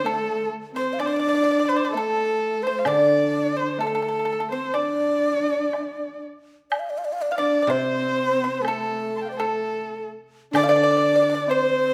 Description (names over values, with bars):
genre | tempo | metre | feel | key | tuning
chinese traditional, Chinese chamber ensemble | 63 BPM | 4/4 | rubato | unclear | A4 = 440 Hz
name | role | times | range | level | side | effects
breathy mellow low xiao | melody | 0.0-11.9 s | A4 to F5 | -27 LUFS | equal | none
clear erhu | second line | 0.0-11.9 s | A4 to C6 | -30 LUFS | equal | none
dark horsehead fiddle | second line | 0.0-11.9 s | A3 to D4 | -30 LUFS | equal | none
pipa | second line | 0.0-11.9 s | A4 to F5 | -29 LUFS | equal | none
guzheng | accompaniment | 0.0-11.9 s | C3 to D3 | -30 LUFS | equal | none
woodblock | percussion | 1.0-11.7 s | none | -32 LUFS | equal | none
room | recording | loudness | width
moderate recital hall reverb, RT60 1.3 s | none | -23 LUFS | mono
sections
0.0-6.7 A section; 6.7-11.9 B section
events
none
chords
none